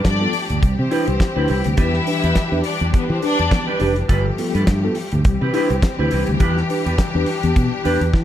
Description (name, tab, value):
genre	disco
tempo	104 BPM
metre	4/4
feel	swing 56% on 16ths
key	unclear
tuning	A4 = 441 Hz
part	clear studio string section	second line	0.0-3.8 s	B3 to E5	-24 LUFS	left 3 dB	none
part	semi-hollow electric guitar	accompaniment	0.0-8.2 s	D4 to B4	-26 LUFS	right 2 dB	wide subtle chorus
part	clear studio string section	sustained chords	0.0-8.2 s	E3 to G4	-25 LUFS	left 3 dB	none
part	damped 70s drum kit	drums	0.0-8.2 s	hi-hat, kick drum, snare drum	-20 LUFS	equal	none
part	fingered electric bass	bass	0.1-8.2 s	F1 to E3	-20 LUFS	equal	none
part	mellow tine electric piano	accompaniment	0.2-8.1 s	G2 to B4	-24 LUFS	left 1 dB	medium stereo tremolo
room	moderate large studio reverb, RT60 1.1 s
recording	dark, warm production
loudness	-16 LUFS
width	side -11 dB against mid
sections	0.0-8.2 A section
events	none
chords	0.0 G9; 0.6 Cmaj7; 1.8 Em7; 4.1 G9; 5.2 Cmaj7